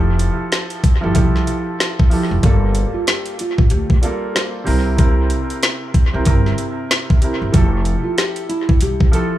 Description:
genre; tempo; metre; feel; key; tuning
hip hop, boom-bap hip-hop; 94 BPM; 4/4; swing 61% on 16ths; F major; A4 = 441 Hz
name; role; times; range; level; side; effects
dark baby grand piano; accompaniment; 0.0-9.4 s; C3 to Bb4; -22 LUFS; right 2 dB; cassette tape, high-pass filter, low-pass filter, dub echo
upright bass; bass; 0.0-9.1 s; F1 to D2; -18 LUFS; equal; none
garage drum kit; drums; 0.2-9.3 s; hi-hat, kick drum, snare drum; -16 LUFS; equal; overdrive, dub echo
nylon-string guitar; melody; 2.4-9.4 s; E4 to C5; -26 LUFS; equal; high-pass filter, low-pass filter, dub echo
room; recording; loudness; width
small room ambience; echo-heavy mix, studio ambience; -14 LUFS; side -14 dB against mid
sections
0.0-9.4 A section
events
none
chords
0.0 Fmaj9; 2.4 Gm9; 4.7 C7; 7.5 Fmaj9

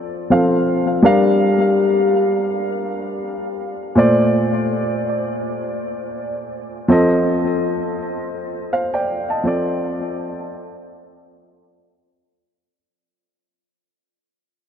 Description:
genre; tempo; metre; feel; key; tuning
R&B; 82 BPM; 4/4; swing 58% on 16ths; unclear; A4 = 443 Hz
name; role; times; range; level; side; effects
dark baby grand piano; solo; 0.0-12.8 s; Bb2 to A5; -16 LUFS; equal; ping-pong delay
room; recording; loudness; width
wet huge ambient reverb, RT60 8.4 s; dreamy mix soaked in reverb, low-pass filter; -16 LUFS; side -8 dB against mid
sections
0.0-6.9 A section; 6.9-12.7 B section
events
fade-out 6.9-12.7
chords
0.0 Dm7/F; 1.0 Gm7; 4.0 Bbmaj9; 6.9 F7; 9.5 Dm7/F

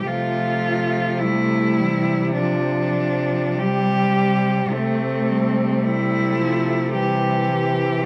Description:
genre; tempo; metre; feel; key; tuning
classical, lyrical piece for cello ensemble; 53 BPM; 4/4; rubato; C major; A4 = 441 Hz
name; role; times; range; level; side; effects
clear cello; melody; 0.0-8.1 s; C4 to G4; -25 LUFS; equal; none
clear cello; second line; 0.0-8.1 s; E3 to A3; -28 LUFS; equal; none
warm cello; accompaniment; 0.0-8.1 s; E3 to A3; -26 LUFS; equal; none
clear cello; bass; 0.0-8.1 s; C3; -27 LUFS; equal; none
room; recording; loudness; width
moderate concert hall reverb, RT60 1.8 s; close, detailed microphones; -20 LUFS; mono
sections
0.0-8.1 A section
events
none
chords
0.1 G5/C; 4.7 C

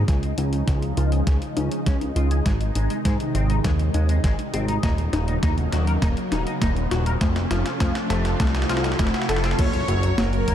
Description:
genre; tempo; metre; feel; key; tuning
synthwave; 101 BPM; 4/4; straight; unclear; A4 = 440 Hz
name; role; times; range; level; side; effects
analog string pad; sustained chords; 0.0-10.5 s; C3 to Gb4; -28 LUFS; equal; ensemble chorus, phaser, sidechain pumping, shimmer reverb
chorused synth bass; bass; 0.0-10.5 s; Eb1 to Ab2; -23 LUFS; equal; none
warbly dusty pluck; arpeggios; 0.1-10.5 s; Ab3 to Bb4; -30 LUFS; left 2 dB; chorus, cassette tape, digital delay, shimmer reverb
semi-hollow electric guitar; riff; 0.1-10.5 s; F3 to Bb4; -35 LUFS; left 4 dB; ensemble chorus, vintage 12-bit sampler grit, low-pass filter, digital delay, shimmer reverb
clean 12-bit digital drum machine; drums; 0.1-10.5 s; crash cymbal, hi-hat, snare drum; -32 LUFS; equal; high-pass filter on hats, high-pass filter on snare, high-pass filter on toms, high-pass filter on cymbals, high-pass filter on room
electronic kick drum; drums; 0.1-10.5 s; none; -23 LUFS; equal; none
riser, swell and impact; sound effects; 3.8-10.5 s; none; -33 LUFS; right 1 dB; none
soft supersaw; melody; 9.3-10.5 s; A4 to Db5; -29 LUFS; equal; digital delay, shimmer reverb
string machine, violins; second line; 9.6-10.5 s; Bb4 to Db5; -34 LUFS; equal; ensemble chorus, shimmer reverb
room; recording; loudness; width
light reverb, digital ambience; dark, warm production; -20 LUFS; side -10 dB against mid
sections
0.1-9.6 A section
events
drum fill 0.1-9.6; filter sweep on synth arpeggio sound 0.1-9.6; riser 3.8-9.6; swell 8.4-9.6; impact 9.6-10.5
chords
0.1 Dbadd9; 2.5 Ab; 4.8 Ebm7; 7.2 F; 9.6 Gb

